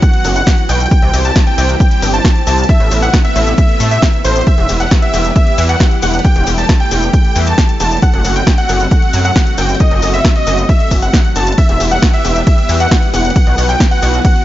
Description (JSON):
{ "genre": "uplifting trance", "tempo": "135 BPM", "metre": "4/4", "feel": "straight", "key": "E minor", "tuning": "A4 = 440 Hz", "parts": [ { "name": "supersaw chords", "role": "melody", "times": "0.0-14.4 s", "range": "C5 to A5", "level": "-18 LUFS", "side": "right 1 dB", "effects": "cassette tape, sidechain pumping, ping-pong delay" }, { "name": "clear baby grand piano", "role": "second line", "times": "0.0-14.4 s", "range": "C5 to A5", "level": "-24 LUFS", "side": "equal", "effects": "none" }, { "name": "lush unison pad", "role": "sustained chords", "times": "0.0-14.4 s", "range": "C3 to G4", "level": "-21 LUFS", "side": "left 1 dB", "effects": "chorus, sidechain pumping" }, { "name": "electronic kick drum", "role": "drums", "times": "0.0-14.3 s", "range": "none", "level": "-11 LUFS", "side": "equal", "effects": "overdrive" }, { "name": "punchy analog drum machine", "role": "drums", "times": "0.0-14.4 s", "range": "hi-hat, ride cymbal, shaker, snare drum", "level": "-20 LUFS", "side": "left 1 dB", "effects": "overdrive" }, { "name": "gritty driven synth bass", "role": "bass", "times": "0.2-14.2 s", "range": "E1 to A2", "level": "-14 LUFS", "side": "equal", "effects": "tube saturation, sidechain pumping" } ], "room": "digital ambience", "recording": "nothing above 7.6 kHz", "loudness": "-9 LUFS", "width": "side -14 dB against mid", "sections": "0.0-14.4 A section", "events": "none", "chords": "0.0 Bsus4; 0.9 C; 2.7 Amadd9; 4.5 Em; 8.0 F#dim; 11.6 Em; 13.4 Bsus4" }